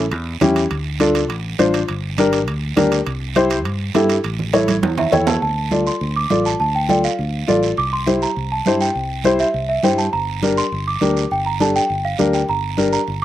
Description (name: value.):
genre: latin, cumbia.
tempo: 204 BPM.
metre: 4/4.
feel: straight.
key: D minor.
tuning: A4 = 440 Hz.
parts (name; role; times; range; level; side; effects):
dark upright piano; accompaniment; 0.0-13.0 s; C#4 to D5; -17 LUFS; left 2 dB; none.
fingered electric bass; bass; 0.0-13.2 s; G1 to G2; -24 LUFS; equal; none.
congas; percussion; 0.1-13.2 s; none; -24 LUFS; right 4 dB; none.
guiro; percussion; 0.1-13.2 s; none; -30 LUFS; right 12 dB; none.
timbales; percussion; 0.1-5.3 s; none; -26 LUFS; right 6 dB; slapback echo.
small celesta; melody; 5.0-13.2 s; E5 to D6; -21 LUFS; right 2 dB; slapback echo.
room: little or no reverb.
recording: recorded outdoors, with no room sound.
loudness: -16 LUFS.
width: side -13 dB against mid.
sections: 0.0-5.4 A section; 5.4-13.2 B section.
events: drum fill 4.7-5.4.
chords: 0.0 A7; 0.7 Dm; 1.9 Gm; 3.1 C; 4.2 A; 5.4 Dm; 7.8 C; 10.1 Gm.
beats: 0.12 0.42 | 0.71 1.01 1.30 1.60 | 1.89 2.19 2.48 2.77 | 3.07 3.36 3.66 3.95 | 4.25 4.54 4.83 5.13 | 5.42 5.72 6.01 6.31 | 6.60 6.89 7.19 7.48 | 7.78 8.07 8.37 8.66 | 8.96 9.25 9.54 9.84 | 10.13 10.43 10.72 11.02 | 11.31 11.61 11.90 12.19 | 12.49 12.78 13.08.